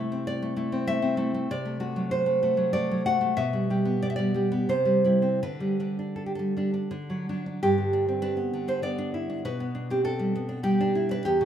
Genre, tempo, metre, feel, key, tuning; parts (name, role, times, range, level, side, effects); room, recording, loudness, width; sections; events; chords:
romantic piece for solo classical guitar; 80-101 BPM; 3/4; rubato; G major; A4 = 440 Hz
nylon-string guitar; solo; 0.0-11.4 s; E2 to F#5; -24 LUFS; equal
moderate recital hall reverb, RT60 1.5 s; minimal, uncompressed stereo recording; -24 LUFS; side -9 dB against mid
0.0-7.6 A section; 7.6-11.4 B section
0.0 Am/C; 1.5 D7/C; 3.4 G/B; 4.7 C; 5.4 Dsus4; 6.9 D; 7.6 G; 9.4 G/B